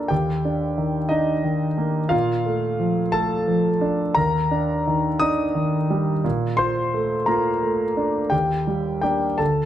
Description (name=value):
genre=neoclassical minimalist piano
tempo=58 BPM (dotted quarters)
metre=6/8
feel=rubato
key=unclear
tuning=A4 = 440 Hz
part: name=warm concert grand piano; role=solo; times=0.0-9.7 s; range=D2 to Eb6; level=-19 LUFS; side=equal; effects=none
room=light reverb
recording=close, detailed microphones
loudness=-19 LUFS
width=side -11 dB against mid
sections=0.0-9.7 A section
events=none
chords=0.1 Ebmaj7; 2.1 Bbmaj7; 4.2 Ebmaj7; 6.2 Bbmaj7; 8.3 Ebmaj7